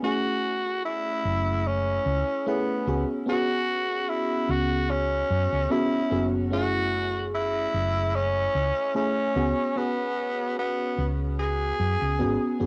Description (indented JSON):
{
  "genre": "vaporwave",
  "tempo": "74 BPM",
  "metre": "4/4",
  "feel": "swing 54% on 16ths",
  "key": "F# minor",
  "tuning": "A4 = 440 Hz",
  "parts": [
    { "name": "growling tenor saxophone", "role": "melody", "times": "0.0-12.6 s", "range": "B3 to G#4", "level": "-29 LUFS", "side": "equal", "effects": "cassette tape, tape echo" },
    { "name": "mellow FM electric piano", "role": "accompaniment", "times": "0.0-12.7 s", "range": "A3 to G#4", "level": "-31 LUFS", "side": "equal", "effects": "phaser, lush chorus" },
    { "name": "hollow-body short-scale fingered electric bass", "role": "bass", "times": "1.2-12.7 s", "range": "F#1 to F#2", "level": "-30 LUFS", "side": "equal", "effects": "tube saturation" }
  ],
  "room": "light reverb",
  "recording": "home recording on cassette",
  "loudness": "-26 LUFS",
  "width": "mono",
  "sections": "0.0-12.7 A section",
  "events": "none",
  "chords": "0.0 F#m7; 2.9 C#7sus4; 6.5 F#m7; 9.4 C#7sus4"
}